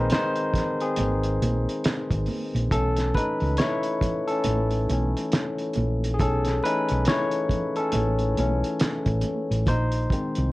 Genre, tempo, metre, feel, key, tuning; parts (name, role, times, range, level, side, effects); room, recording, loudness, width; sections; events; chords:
R&B, neo-soul; 69 BPM; 4/4; swing 60% on 16ths; B mixolydian; A4 = 440 Hz
barky tine electric piano; accompaniment; 0.0-10.5 s; D#3 to C#5; -25 LUFS; left 1 dB; overdrive
hollow-body short-scale fingered electric bass; bass; 0.0-10.5 s; G#1 to C#2; -25 LUFS; equal
cloth-damped thuddy drum kit; drums; 0.1-10.5 s; hi-hat, kick drum, snare drum; -27 LUFS; equal
congas; percussion; 0.1-9.9 s; -36 LUFS; right 5 dB
light reverb; worn, warbling old tape, cassette tape, warbly pitch drift; -22 LUFS; side -19 dB against mid
0.0-10.5 A section
tine electric piano solo 0.0-10.5
0.0 A#9sus4; 2.7 B9sus4; 9.7 A#9sus4